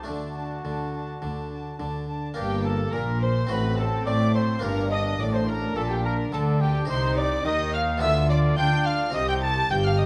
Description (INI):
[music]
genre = classical, baroque-style concerto movement with solo episodes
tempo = 106 BPM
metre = 4/4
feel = straight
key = G minor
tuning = A4 = 440 Hz
[part]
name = rich chamber violin section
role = melody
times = 0.0-10.1 s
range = G5 to A6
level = -39 LUFS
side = equal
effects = none
[part]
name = dark chamber violin section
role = second line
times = 0.0-10.1 s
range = G4 to A5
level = -34 LUFS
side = equal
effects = none
[part]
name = dark chamber viola section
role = accompaniment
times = 0.0-10.1 s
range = Bb3 to G4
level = -35 LUFS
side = equal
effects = none
[part]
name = harpsichord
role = accompaniment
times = 0.0-10.1 s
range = G2 to G4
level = -36 LUFS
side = equal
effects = none
[part]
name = mellow trumpet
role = melody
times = 0.1-10.1 s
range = F#4 to A5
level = -32 LUFS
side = equal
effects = none
[part]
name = rich chamber double bass section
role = bass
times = 0.1-10.1 s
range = G1 to D3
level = -30 LUFS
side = equal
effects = none
[part]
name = warm chamber cello section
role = bass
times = 0.1-10.1 s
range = G2 to D4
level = -32 LUFS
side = equal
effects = none
[sound]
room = moderate scoring stage reverb, RT60 1.5 s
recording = close, detailed microphones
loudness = -25 LUFS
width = mono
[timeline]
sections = 0.0-2.4 A section; 2.4-10.1 B section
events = none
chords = 0.1 D; 2.4 Gm; 3.5 F#dim/A; 4.6 Gm; 6.9 Cm; 8.0 Bdim/D; 9.1 Cm